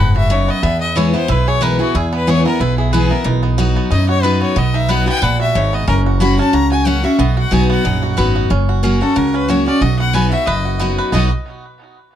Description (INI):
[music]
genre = bluegrass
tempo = 183 BPM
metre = 4/4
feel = swing 55% on 8ths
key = B major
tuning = A4 = 443 Hz
[part]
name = bluegrass banjo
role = melody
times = 0.0-11.3 s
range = B3 to B4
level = -23 LUFS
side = right 4 dB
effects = tape echo
[part]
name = clear fiddle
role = melody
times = 0.0-11.3 s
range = E4 to B5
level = -20 LUFS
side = left 3 dB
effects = none
[part]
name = picked steel-string acoustic guitar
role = accompaniment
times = 0.0-11.3 s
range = E2 to F#4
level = -17 LUFS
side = left 1 dB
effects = none
[part]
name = upright bass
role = bass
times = 0.0-11.3 s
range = F#1 to F#2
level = -17 LUFS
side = right 1 dB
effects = none
[sound]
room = little or no reverb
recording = close, detailed microphones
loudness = -13 LUFS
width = side -10 dB against mid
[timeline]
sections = 0.0-8.5 A section; 8.5-11.1 B section; 11.1-12.2 C section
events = none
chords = 0.0 B; 0.6 E; 3.3 B; 5.9 F#; 7.2 B; 8.5 F#; 9.8 B